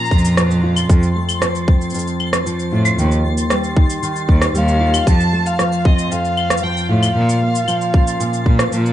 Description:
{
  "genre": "folktronica",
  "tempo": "115 BPM",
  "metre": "4/4",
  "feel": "straight",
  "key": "F mixolydian",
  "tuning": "A4 = 440 Hz",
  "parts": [
    { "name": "dark violin", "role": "melody", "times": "0.0-0.6, 4.6-8.9 s", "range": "Eb5 to Bb5", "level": "-21 LUFS", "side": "equal", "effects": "digital delay" },
    { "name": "nylon-string guitar", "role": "arpeggios", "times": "0.0-8.9 s", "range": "F2 to F4", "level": "-21 LUFS", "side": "equal", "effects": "vintage 12-bit sampler grit" },
    { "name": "twinkling granular texture", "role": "texture", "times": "0.0-8.9 s", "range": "C6 to A6", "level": "-28 LUFS", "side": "left 1 dB", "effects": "built-in reverb" },
    { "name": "clear cello", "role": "bass", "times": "0.1-8.9 s", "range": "Eb2 to Bb2", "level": "-18 LUFS", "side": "equal", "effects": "none" },
    { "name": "electronic kick drum", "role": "drums", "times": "0.1-8.6 s", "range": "none", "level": "-13 LUFS", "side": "equal", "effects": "none" },
    { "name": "electronic shaker, rim click and claves", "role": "drums", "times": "0.1-8.9 s", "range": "none", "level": "-21 LUFS", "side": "right 1 dB", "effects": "none" }
  ],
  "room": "light reverb, studio reverb",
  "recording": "dark, warm production, nothing above 10.9 kHz",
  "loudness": "-14 LUFS",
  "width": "side -12 dB against mid",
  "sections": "0.0-8.9 A section",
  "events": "none",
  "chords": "0.0 Bbm; 0.9 F; 3.0 Ebadd9; 5.1 F; 7.2 Bbm",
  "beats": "0.37 | 0.90 1.42 1.94 2.46 | 2.98 3.50 4.03 4.55 | 5.07 5.59 6.11 6.63 | 7.16 7.68 8.20 8.72"
}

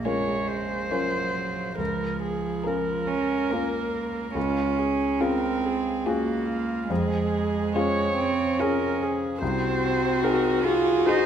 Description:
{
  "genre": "classical, slow romantic movement for piano quintet",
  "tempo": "71 BPM",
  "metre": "3/4",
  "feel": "rubato",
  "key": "unclear",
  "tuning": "A4 = 438 Hz",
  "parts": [
    { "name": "warm cello", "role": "second line", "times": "0.0-11.3 s", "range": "F3 to F4", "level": "-26 LUFS", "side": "right 5 dB", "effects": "none" },
    { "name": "warm concert grand piano", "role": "accompaniment", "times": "0.0-11.3 s", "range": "Bb1 to Bb4", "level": "-28 LUFS", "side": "left 3 dB", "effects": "none" },
    { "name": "dark violin", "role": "melody", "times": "0.1-11.3 s", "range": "F4 to Db5", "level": "-29 LUFS", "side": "left 8 dB", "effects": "none" },
    { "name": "dark viola", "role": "accompaniment", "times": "0.1-11.3 s", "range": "F4 to Db5", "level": "-29 LUFS", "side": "right 1 dB", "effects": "none" }
  ],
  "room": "moderate recital hall reverb, RT60 1.6 s",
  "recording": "none",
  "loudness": "-23 LUFS",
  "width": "side -8 dB against mid",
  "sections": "0.0-11.3 A section",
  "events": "none",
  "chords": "0.0 Bbm; 1.8 Bbm/Db; 4.4 Db; 6.9 Db/F; 9.4 Ab7/C",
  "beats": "0.06 0.92 | 1.79 2.67 3.52 | 4.36 5.22 6.06 | 6.90 7.75 8.60 | 9.42 10.23 11.07"
}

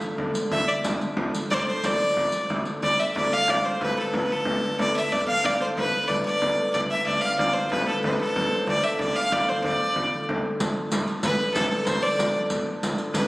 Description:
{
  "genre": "medieval dance",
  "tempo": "124 BPM (dotted quarters)",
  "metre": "6/8",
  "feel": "straight",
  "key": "D dorian",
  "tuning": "A4 = 440 Hz",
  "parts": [
    { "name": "concert harp", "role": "second line", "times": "0.0-13.3 s", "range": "A4 to F5", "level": "-30 LUFS", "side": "equal", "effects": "none" },
    { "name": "dark hurdy-gurdy", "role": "drone", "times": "0.0-13.3 s", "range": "D3 to A3", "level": "-31 LUFS", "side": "equal", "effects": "none" },
    { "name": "riq", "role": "percussion", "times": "0.0-2.7, 10.6-13.3 s", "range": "none", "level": "-31 LUFS", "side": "equal", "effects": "none" },
    { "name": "frame drum", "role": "percussion", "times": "0.2-13.3 s", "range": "none", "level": "-29 LUFS", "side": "equal", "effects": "none" },
    { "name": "bright fiddle", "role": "melody", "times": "0.5-13.3 s", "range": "A4 to F5", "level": "-24 LUFS", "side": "equal", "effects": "none" }
  ],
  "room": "wet recital hall reverb, RT60 1.3 s",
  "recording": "recorded on a phone in the room, studio reverb",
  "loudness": "-22 LUFS",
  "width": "side -20 dB against mid",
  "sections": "0.0-2.8 A section; 2.8-10.6 B section; 10.6-13.3 C section",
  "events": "speeding up 0.0-13.3",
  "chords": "none",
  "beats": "0.35 | 0.84 1.34 | 1.83 2.33 | 2.82 3.31 | 3.81 4.30 | 4.79 5.28 | 5.76 6.25 | 6.74 7.22 | 7.71 8.19 | 8.67 9.15 | 9.63 10.12 | 10.59 11.07 | 11.55 12.03 | 12.50 12.97"
}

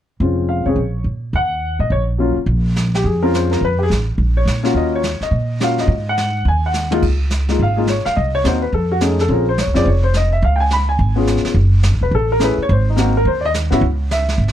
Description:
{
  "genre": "jazz piano trio",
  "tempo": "212 BPM",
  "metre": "4/4",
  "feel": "swing 62% on 8ths",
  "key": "Bb minor",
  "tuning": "A4 = 440 Hz",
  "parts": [
    { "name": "warm upright piano", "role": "melody", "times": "0.2-14.5 s", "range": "Gb3 to Cb6", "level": "-18 LUFS", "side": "left 2 dB", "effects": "none" },
    { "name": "upright bass", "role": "bass", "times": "0.2-14.5 s", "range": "E1 to Bb2", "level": "-17 LUFS", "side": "right 1 dB", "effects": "none" },
    { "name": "vintage brush drum kit", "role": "drums", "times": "2.5-14.5 s", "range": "brushed snare drum, hi-hat, kick drum, ride cymbal, snare drum, toms", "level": "-26 LUFS", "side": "right 3 dB", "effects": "none" }
  ],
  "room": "little or no reverb",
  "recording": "dark, warm production",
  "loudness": "-14 LUFS",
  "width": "side -11 dB against mid",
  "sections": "0.2-2.5 A section; 2.5-11.6 B section; 11.6-14.5 C section",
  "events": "drum fill 6.7",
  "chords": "0.2 Bbm7; 1.3 Ebm7; 2.5 Bbm9; 3.6 G9 (rootless); 4.2 Bbm; 4.8 Ebm9; 5.9 Ab5; 7.0 Db; 8.2 Cm7b5; 8.7 F7alt; 9.3 Bbm9; 10.4 Db7; 11.6 F#m; 12.7 G#7; 13.8 C#m",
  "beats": "| 0.20 0.49 0.77 1.06 | 1.34 1.62 1.91 2.19 | 2.48 2.76 3.05 3.33 | 3.62 3.90 4.18 4.47 | 4.75 5.03 5.32 5.60 | 5.88 6.17 6.45 6.74 | 7.02 7.30 7.59 7.87 | 8.15 8.44 8.72 9.00 | 9.29 9.57 9.85 10.14 | 10.42 10.71 10.99 11.27 | 11.55 11.84 12.12 12.40 | 12.69 12.97 13.25 13.53 | 13.82 14.10 14.38"
}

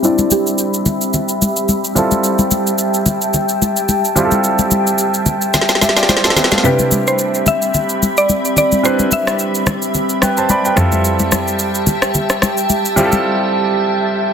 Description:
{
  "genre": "amapiano",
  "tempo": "109 BPM",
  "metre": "4/4",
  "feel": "swing 55% on 16ths",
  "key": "unclear",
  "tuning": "A4 = 441 Hz",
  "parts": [
    { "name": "mallet-like synth pluck", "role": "melody", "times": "0.0-0.8, 6.7-9.9 s", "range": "E4 to E5", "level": "-17 LUFS", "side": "equal", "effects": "chorus, low-pass filter, tape echo" },
    { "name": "clear baby grand piano", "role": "accompaniment", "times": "0.0-14.3 s", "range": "G3 to B5", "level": "-18 LUFS", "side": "right 2 dB", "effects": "low-pass filter" },
    { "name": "glassy FM pad", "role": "sustained chords", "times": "0.0-14.3 s", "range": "C4 to B5", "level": "-19 LUFS", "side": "left 1 dB", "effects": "ensemble chorus, built-in reverb, low-pass filter" },
    { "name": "electronic shaker, snare drum and rim click", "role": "drums", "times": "0.0-13.2 s", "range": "none", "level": "-17 LUFS", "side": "equal", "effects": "none" },
    { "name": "congas", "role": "percussion", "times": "0.2-13.2 s", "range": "none", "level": "-20 LUFS", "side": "left 2 dB", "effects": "none" },
    { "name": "rich cello", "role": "bass", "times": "6.6-13.2 s", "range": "F2 to C3", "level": "-18 LUFS", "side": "right 1 dB", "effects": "none" }
  ],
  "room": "light reverb",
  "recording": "dense, heavily limited modern master",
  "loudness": "-12 LUFS",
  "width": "side -7 dB against mid",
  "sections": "0.0-14.3 A section",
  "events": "filter sweep 0.0-14.3; drum fill 5.5-6.6",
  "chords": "0.0 Cmaj7; 2.0 Fmaj9; 6.6 Cmaj7; 10.8 Fmaj9",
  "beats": "| 0.04 0.59 1.14 1.69 | 2.24 2.79 3.34 3.89 | 4.44 4.99 5.54 6.09 | 6.64 7.19 7.74 8.29 | 8.84 9.39 9.94 10.49 | 11.04 11.60 12.15 12.70 | 13.25 13.80"
}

